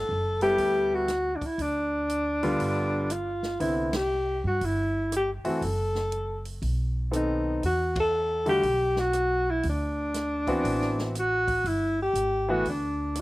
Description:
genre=jazz, small-group swing and bop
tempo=119 BPM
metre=4/4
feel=swing 66% on 8ths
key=G major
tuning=A4 = 438 Hz
part: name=mellow alto saxophone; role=melody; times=0.0-13.2 s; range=D4 to A4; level=-26 LUFS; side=equal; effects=none
part: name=upright bass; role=bass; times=0.0-13.2 s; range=F#1 to G2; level=-32 LUFS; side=equal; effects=none
part: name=clear concert grand piano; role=accompaniment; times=0.4-12.6 s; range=D3 to A4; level=-28 LUFS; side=equal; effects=none
part: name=open jazz drum kit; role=drums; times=0.4-13.2 s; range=hi-hat, kick drum, ride cymbal, rim click, snare drum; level=-38 LUFS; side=right 1 dB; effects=none
room=little or no reverb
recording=recorded outdoors, with no room sound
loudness=-24 LUFS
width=side -18 dB against mid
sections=0.0-13.2 A section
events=band accent 3.9, 7.9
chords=0.0 Gmaj13; 1.6 Dm; 2.6 G7; 3.6 Cmaj9; 5.6 F#m; 6.6 B7b9; 7.6 Emadd9; 9.6 D13; 11.7 G5

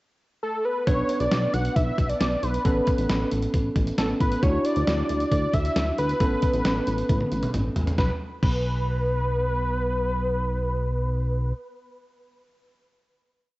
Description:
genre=synth-pop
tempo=135 BPM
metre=4/4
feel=straight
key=unclear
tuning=A4 = 440 Hz
part: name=wide unison lead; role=melody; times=0.4-11.5 s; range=A4 to F#5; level=-27 LUFS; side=equal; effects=cassette tape
part: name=bell-like tine electric piano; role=accompaniment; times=0.9-7.9 s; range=B3 to B4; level=-28 LUFS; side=right 1 dB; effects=cassette tape
part: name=chorused synth bass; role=bass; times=0.9-11.5 s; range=A1 to D2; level=-26 LUFS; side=equal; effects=none
part: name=dusty soul sampler-style drum kit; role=drums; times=0.9-8.6 s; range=crash cymbal, hi-hat, kick drum, snare drum, toms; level=-26 LUFS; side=equal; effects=cassette tape
room=light reverb, digital ambience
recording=home recording on cassette, nothing above 7.9 kHz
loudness=-22 LUFS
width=side -19 dB against mid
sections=0.0-0.9 pickup bar; 0.9-8.0 verse; 8.0-11.5 final note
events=drum fill 7.1-8.0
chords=0.0 N.C.; 0.9 Bm; 2.6 Aadd9; 4.4 Dadd9; 6.2 Aadd9; 8.0 N.C.

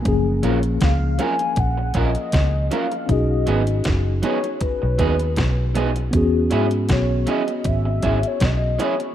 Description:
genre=lovers rock reggae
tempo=79 BPM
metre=4/4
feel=swing 55% on 16ths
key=F# major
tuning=A4 = 440 Hz
part: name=mellow tine electric piano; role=accompaniment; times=0.0-9.1 s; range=E#3 to G#4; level=-24 LUFS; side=left 3 dB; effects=medium stereo tremolo
part: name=vintage muted fingered electric bass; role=bass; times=0.0-8.8 s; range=F#1 to G#2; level=-21 LUFS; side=equal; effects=none
part: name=detuned 8-bit digital drum machine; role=drums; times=0.1-9.1 s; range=hi-hat, kick drum, snare drum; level=-23 LUFS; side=equal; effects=none
part: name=electric guitar through a small old amp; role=stabs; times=0.4-9.0 s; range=F#3 to A#4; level=-26 LUFS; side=right 5 dB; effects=none
part: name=warm velvety synth lead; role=melody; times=0.8-9.1 s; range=B4 to G#5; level=-26 LUFS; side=left 1 dB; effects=chorus, tape echo
part: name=bongos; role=percussion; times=0.8-9.0 s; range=none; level=-34 LUFS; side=right 4 dB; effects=none
room=light reverb, digital ambience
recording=rough home demo mix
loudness=-18 LUFS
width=side -11 dB against mid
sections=0.0-9.1 A section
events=none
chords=0.1 F#maj7; 3.1 B6; 6.1 E69

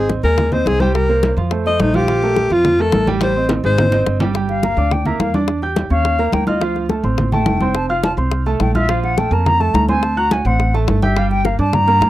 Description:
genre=Afro-Cuban jazz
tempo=211 BPM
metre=4/4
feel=straight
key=G minor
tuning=A4 = 437 Hz
part: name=breathy alto saxophone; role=melody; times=0.0-4.0 s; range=Eb4 to Eb5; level=-17 LUFS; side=left 2 dB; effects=none
part: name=warm concert grand piano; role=accompaniment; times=0.0-12.1 s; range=F3 to G6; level=-21 LUFS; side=right 5 dB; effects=none
part: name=upright bass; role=bass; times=0.0-12.1 s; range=F1 to G2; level=-19 LUFS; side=equal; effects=none
part: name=bongos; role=percussion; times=0.1-12.1 s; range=none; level=-24 LUFS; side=left 8 dB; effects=none
part: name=congas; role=percussion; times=0.1-12.1 s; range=none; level=-21 LUFS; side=equal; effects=none
part: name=silver concert flute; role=second line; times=4.5-12.1 s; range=Eb5 to Bb5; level=-19 LUFS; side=left 2 dB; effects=none
room=little or no reverb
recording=dry, close 1970s-style studio recording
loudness=-14 LUFS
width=side -14 dB against mid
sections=0.0-4.3 A section; 4.3-12.1 B section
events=drum fill 3.2-4.3; flute solo 4.3-12.1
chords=0.0 Abmaj9; 0.9 C5; 1.5 F; 2.1 Bb5; 3.2 Am7b5; 3.8 Ab; 4.3 Gm7; 5.5 Eb7b9; 6.1 Ebsus2; 6.6 Dm7; 7.8 F; 8.9 Bbmaj7; 10.0 D7; 11.2 Gm

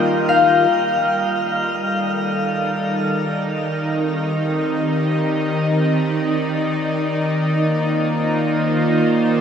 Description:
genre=ambient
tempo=free time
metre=none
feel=none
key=unclear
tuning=A4 = 440 Hz
part: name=evolving wavetable pad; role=sustained chords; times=0.0-9.4 s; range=Eb3 to Eb5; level=-22 LUFS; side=right 1 dB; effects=chorus, built-in reverb
part: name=concert harp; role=arpeggios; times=0.0-2.4 s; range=G3 to G5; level=-20 LUFS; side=left 3 dB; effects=diffuse ambient delay
part: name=bowed-like drone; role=drone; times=1.6-9.4 s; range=Eb3 to Eb4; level=-20 LUFS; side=equal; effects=built-in reverb
room=wet shimmer reverb, RT60 9.1 s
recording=none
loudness=-17 LUFS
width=side -7 dB against mid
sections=0.7-9.4 A section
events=fade-in on ambient pad 0.7-9.4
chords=0.0 Eb; 0.7 Gm7; 3.9 Cm9; 7.0 Bb

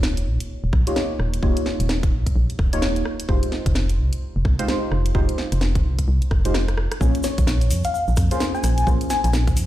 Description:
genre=UK garage, two-step garage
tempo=129 BPM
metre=4/4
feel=swing 60% on 16ths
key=Bb dorian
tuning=A4 = 440 Hz
part: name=deep mellow chord stab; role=stabs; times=0.0-9.7 s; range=Ab3 to Db5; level=-27 LUFS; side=equal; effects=chorus, ping-pong delay
part: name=organ-like FM bass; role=bass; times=0.0-9.7 s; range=Eb1 to F2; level=-20 LUFS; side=equal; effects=none
part: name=garage drum kit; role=drums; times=0.0-9.7 s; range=hi-hat, rim click, snare drum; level=-28 LUFS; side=equal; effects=studio reverb
part: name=electronic kick drum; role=drums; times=0.7-9.5 s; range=none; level=-20 LUFS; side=equal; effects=studio reverb
part: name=egg shaker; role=percussion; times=7.0-9.7 s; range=none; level=-37 LUFS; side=left 3 dB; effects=none
part: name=bell-like FM electric piano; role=melody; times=7.2-9.3 s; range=Db5 to Ab5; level=-25 LUFS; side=left 2 dB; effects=chorus, phaser, cassette tape, ping-pong delay
room=light reverb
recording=played on a big sound system in a bare room, large studio reverb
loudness=-18 LUFS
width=side -14 dB against mid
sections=0.0-9.7 A section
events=drum fill 6.3-7.0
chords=0.0 Eb9; 3.1 Fm9; 7.0 Bbm9

